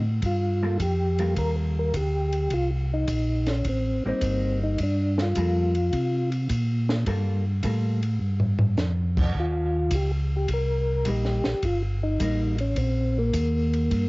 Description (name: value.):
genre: soul jazz organ trio.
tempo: 105 BPM.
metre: 4/4.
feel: swing 69% on 8ths.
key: unclear.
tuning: A4 = 440 Hz.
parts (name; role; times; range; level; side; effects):
mellow tonewheel organ; bass; 0.0-14.1 s; G1 to C3; -25 LUFS; equal; chorus vibrato, slow rotary speaker.
compact cocktail drum kit; drums; 0.2-14.1 s; crash cymbal, hi-hat, kick drum, ride cymbal, snare drum, toms; -31 LUFS; equal; none.
percussive tonewheel organ; melody; 0.3-14.1 s; Bb3 to Bb4; -27 LUFS; left 1 dB; slow rotary speaker, chorus vibrato, cassette tape.
hollow-body jazz guitar; accompaniment; 0.6-12.6 s; G3 to A4; -31 LUFS; equal; cassette tape.
room: little or no reverb.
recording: home recording on cassette, nothing above 7.7 kHz.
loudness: -22 LUFS.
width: side -23 dB against mid.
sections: 0.2-14.1 A section.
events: drum fill 8.2-8.8.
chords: 0.2 Gm9; 2.5 Cm7; 4.8 Gm9; 9.3 Cm7.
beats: | 0.23 0.80 1.37 1.94 | 2.51 3.08 3.65 4.22 | 4.79 5.36 5.93 6.50 | 7.07 7.64 8.21 8.78 | 9.35 9.92 10.49 11.06 | 11.63 12.20 12.77 13.34 | 13.91.